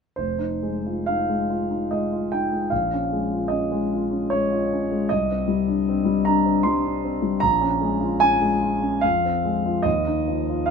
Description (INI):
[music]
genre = classical, impressionist solo piano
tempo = 63-78 BPM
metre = 3/4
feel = rubato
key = F minor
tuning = A4 = 439 Hz
[part]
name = warm concert grand piano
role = solo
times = 0.2-10.7 s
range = F1 to C6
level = -20 LUFS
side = equal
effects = none
[sound]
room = light reverb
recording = minimal, uncompressed stereo recording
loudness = -20 LUFS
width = side -6 dB against mid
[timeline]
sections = 0.2-10.7 A section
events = none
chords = 0.2 Fm7; 2.7 Bbm7; 5.1 Cmadd9; 7.4 Bbm7; 9.0 Fm; 9.8 Ebsus2